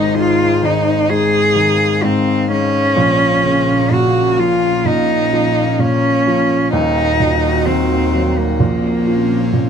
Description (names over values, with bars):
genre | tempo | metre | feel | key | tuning
acoustic folk-pop ballad | 64 BPM | 4/4 | straight | Bb minor | A4 = 440 Hz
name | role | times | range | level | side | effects
rich cello | melody | 0.0-9.7 s | Bb3 to Ab4 | -15 LUFS | equal | none
felt-muted upright piano | accompaniment | 0.0-9.7 s | Eb1 to Ab3 | -17 LUFS | right 1 dB | none
airy breathy pad | sustained chords | 0.0-9.7 s | Eb2 to F5 | -20 LUFS | left 2 dB | chorus
room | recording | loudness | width
light reverb | close, detailed microphones | -12 LUFS | side -7 dB against mid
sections
0.0-9.7 A section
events
none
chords
0.0 Ab; 3.0 Bbm; 6.7 Ebm; 8.6 Bbmadd9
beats
0.14 1.08 2.02 | 2.96 3.90 4.84 5.78 | 6.72 7.66 8.60 9.54